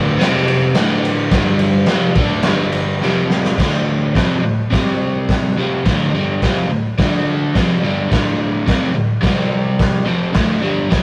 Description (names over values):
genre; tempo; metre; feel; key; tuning
garage rock duo or trio; 106 BPM; 4/4; straight; unclear; A4 = 439 Hz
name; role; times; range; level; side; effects
crunchy overdriven guitar; riff; 0.0-11.0 s; D2 to D4; -19 LUFS; equal; none
raw garage drum kit; drums; 0.2-11.0 s; crash cymbal, hi-hat, kick drum, ride cymbal, snare drum; -20 LUFS; equal; none
room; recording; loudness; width
moderate booth ambience, RT60 0.2 s; rough rehearsal-room recording, warm saturation; -16 LUFS; mono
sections
0.0-3.6 A section; 3.6-11.0 B section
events
drum fill 3.0-3.6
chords
0.2 F5; 0.7 D5; 1.3 G5; 1.9 D5; 2.4 G5; 3.0 F5; 3.6 D5; 4.7 C5; 5.6 D5; 9.2 C5; 10.1 D5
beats
0.18 0.75 | 1.31 1.88 2.45 3.01 | 3.58 4.14 4.71 5.28 | 5.84 6.41 6.97 7.54 | 8.10 8.67 9.23 9.79 | 10.36 10.92